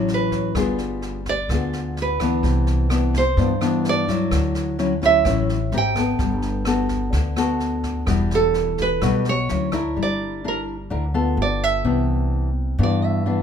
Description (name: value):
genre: bossa nova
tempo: 128 BPM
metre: 4/4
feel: straight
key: unclear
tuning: A4 = 440 Hz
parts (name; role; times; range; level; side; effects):
- nylon-string guitar; melody; 0.0-13.4 s; A4 to G5; -22 LUFS; right 5 dB; none
- nylon-string guitar; accompaniment; 0.0-13.4 s; G2 to A#4; -23 LUFS; left 4 dB; none
- upright bass; bass; 0.0-13.4 s; E1 to G2; -24 LUFS; equal; none
- jazz brush drum kit; drums; 0.1-9.8 s; kick drum, rim click, snare drum; -30 LUFS; equal; none
room: little or no reverb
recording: minimal, uncompressed stereo recording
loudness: -19 LUFS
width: side -8 dB against mid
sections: 0.0-10.0 A section; 10.0-13.4 A section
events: nylon-string guitar solo 0.0-13.4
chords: 0.0 Dmaj9 (rootless); 0.6 G7b9; 2.4 Cmaj9; 4.3 Dmaj9; 5.7 G#maj9; 6.2 Gmaj9; 8.1 Em9; 9.5 Dmaj9; 10.0 Gm6; 11.4 G9; 11.8 Cmaj9